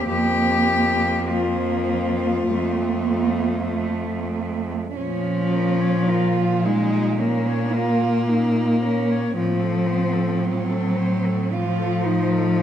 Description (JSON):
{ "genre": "classical, lyrical piece for cello ensemble", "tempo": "48-57 BPM", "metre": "4/4", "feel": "rubato", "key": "Bb minor", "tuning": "A4 = 442 Hz", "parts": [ { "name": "warm cello", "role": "melody", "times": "0.0-12.6 s", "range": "Db4 to Db5", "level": "-27 LUFS", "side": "left 5 dB", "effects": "none" }, { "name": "dark cello", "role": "second line", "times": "0.0-12.6 s", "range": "F3 to F4", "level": "-26 LUFS", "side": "right 8 dB", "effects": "none" }, { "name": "warm cello", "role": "accompaniment", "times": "0.0-12.6 s", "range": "F3 to Bb3", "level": "-22 LUFS", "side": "left 2 dB", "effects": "none" }, { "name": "clear cello", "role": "bass", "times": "0.0-12.6 s", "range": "F2 to Bb2", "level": "-26 LUFS", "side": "right 2 dB", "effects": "none" } ], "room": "wet recital hall reverb, RT60 1.9 s", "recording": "none", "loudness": "-19 LUFS", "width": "side -10 dB against mid", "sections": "0.0-5.0 A section; 5.0-12.6 B section", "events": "none", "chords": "0.1 Bb5/F; 2.5 F; 5.0 Bbm; 9.4 F/A", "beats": "| 0.10 1.29 2.51 3.75 | 4.96 6.10 7.20 8.29 | 9.36 10.43 11.52 12.60" }